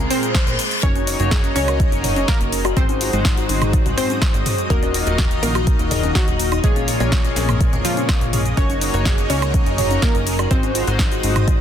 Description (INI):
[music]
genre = progressive house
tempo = 124 BPM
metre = 4/4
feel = straight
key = unclear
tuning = A4 = 441 Hz
[part]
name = lush unison pad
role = sustained chords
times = 0.0-11.6 s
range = Db3 to F5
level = -28 LUFS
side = left 1 dB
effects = chorus, sidechain pumping
[part]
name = glassy wavetable pluck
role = arpeggios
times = 0.0-11.6 s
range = Bb3 to Db5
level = -28 LUFS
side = equal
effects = chorus, sidechain pumping, digital delay
[part]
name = chorused polysynth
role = stabs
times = 0.0-11.6 s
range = Ab2 to Eb5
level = -26 LUFS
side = left 2 dB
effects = cassette tape, sidechain pumping, digital delay
[part]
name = plucky analog bass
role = bass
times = 0.0-11.6 s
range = Eb1 to Db2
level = -23 LUFS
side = equal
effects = sidechain pumping
[part]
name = reverse cymbal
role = sound effects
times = 0.0-0.8 s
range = none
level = -25 LUFS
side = left 3 dB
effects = none
[part]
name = wide unison pluck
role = melody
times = 0.1-10.9 s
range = F3 to Db5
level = -27 LUFS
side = right 1 dB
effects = cassette tape, digital delay
[part]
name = airy dreamy lead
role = second line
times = 0.1-10.9 s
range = F4 to Db5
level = -31 LUFS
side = equal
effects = chorus, sidechain pumping, digital delay
[part]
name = deep house drum kit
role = drums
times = 0.1-11.6 s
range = cabasa, hi-hat, snare drum, woodblock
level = -25 LUFS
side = equal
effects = none
[part]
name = electronic kick drum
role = drums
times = 0.3-11.6 s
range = none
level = -18 LUFS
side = equal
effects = none
[part]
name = backwards swelling texture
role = texture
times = 1.9-11.6 s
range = Eb5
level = -33 LUFS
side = right 1 dB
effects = built-in reverb, sidechain pumping
[part]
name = electronic congas, bongos and toms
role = percussion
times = 1.0-11.6 s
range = none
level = -28 LUFS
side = left 3 dB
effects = overdrive, sidechain pumping on perc, sidechain pumping on toms
[sound]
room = little or no reverb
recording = dense, heavily limited modern master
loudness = -16 LUFS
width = side -9 dB against mid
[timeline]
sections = 0.0-11.6 A section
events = reverse cymbal 0.0-0.8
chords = 0.0 Bbm7; 0.8 Gb6; 2.8 Ab7; 4.7 Ebmadd9; 6.6 Bbm7; 8.6 Gb6; 10.5 Ab7